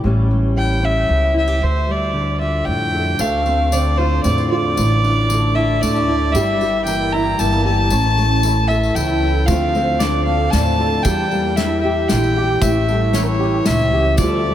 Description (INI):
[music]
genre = acoustic folk duo or small band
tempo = 115 BPM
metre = 3/4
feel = straight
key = D minor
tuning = A4 = 437 Hz
[part]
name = fingerpicked steel-string acoustic guitar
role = accompaniment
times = 0.0-14.5 s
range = D2 to A4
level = -21 LUFS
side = left 2 dB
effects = none
[part]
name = upright bass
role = bass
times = 0.0-14.5 s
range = G1 to F2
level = -20 LUFS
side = equal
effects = none
[part]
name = warm fiddle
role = melody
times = 0.6-14.5 s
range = Bb4 to Bb5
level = -20 LUFS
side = left 1 dB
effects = analog delay
[part]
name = clear upright piano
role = arpeggios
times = 3.2-14.5 s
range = E3 to A4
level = -23 LUFS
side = right 4 dB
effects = ensemble chorus
[part]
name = tambourine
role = percussion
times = 3.2-14.3 s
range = none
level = -32 LUFS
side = left 9 dB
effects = none
[part]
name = loose indie drum kit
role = drums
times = 9.5-14.3 s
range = hi-hat, kick drum, snare drum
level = -23 LUFS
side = left 1 dB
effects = none
[sound]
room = moderate huge ambient reverb, RT60 4.4 s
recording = dreamy mix soaked in reverb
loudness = -15 LUFS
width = side -11 dB against mid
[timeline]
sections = 0.0-3.2 A section; 3.2-14.5 A section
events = none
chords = 0.0 A7; 1.6 Dm; 3.2 Dm7; 4.8 Asus4; 6.3 Edim/G; 7.9 A; 9.5 Dm7; 11.1 Edim; 12.6 A7